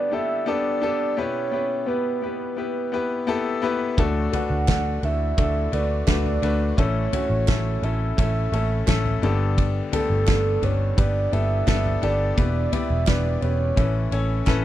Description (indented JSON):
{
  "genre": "piano-driven pop",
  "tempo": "86 BPM",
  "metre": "4/4",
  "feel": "straight",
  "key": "D major",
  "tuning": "A4 = 439 Hz",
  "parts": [
    { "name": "soft octave-layered synth lead", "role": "melody", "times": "0.0-14.5 s", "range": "A4 to F#5", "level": "-27 LUFS", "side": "right 3 dB", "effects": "chorus" },
    { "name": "bright upright piano", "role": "accompaniment", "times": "0.0-14.6 s", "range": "G2 to D5", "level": "-26 LUFS", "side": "left 5 dB", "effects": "none" },
    { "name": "vintage muted picked electric bass", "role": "bass", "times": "4.0-14.6 s", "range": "E1 to D2", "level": "-23 LUFS", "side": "right 1 dB", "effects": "none" },
    { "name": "loose indie drum kit", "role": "drums", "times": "4.0-14.6 s", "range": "kick drum, ride cymbal, snare drum, toms", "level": "-24 LUFS", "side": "right 1 dB", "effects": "none" },
    { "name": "group handclap", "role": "percussion", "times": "4.7-14.6 s", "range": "none", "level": "-37 LUFS", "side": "right 18 dB", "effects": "none" }
  ],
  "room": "small room ambience",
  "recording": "none",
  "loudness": "-20 LUFS",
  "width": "side -13 dB against mid",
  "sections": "0.0-14.6 A section",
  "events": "drum fill 14.5",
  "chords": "0.0 Gadd9; 1.2 Em; 4.0 D; 6.8 A; 9.2 Gadd9; 12.4 Em; 13.8 Aadd9",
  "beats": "0.48 | 1.18 1.88 2.58 3.28 | 3.98 4.68 5.38 6.08 | 6.78 7.48 8.18 8.88 | 9.58 10.28 10.97 11.68 | 12.37 13.07 13.77 14.47"
}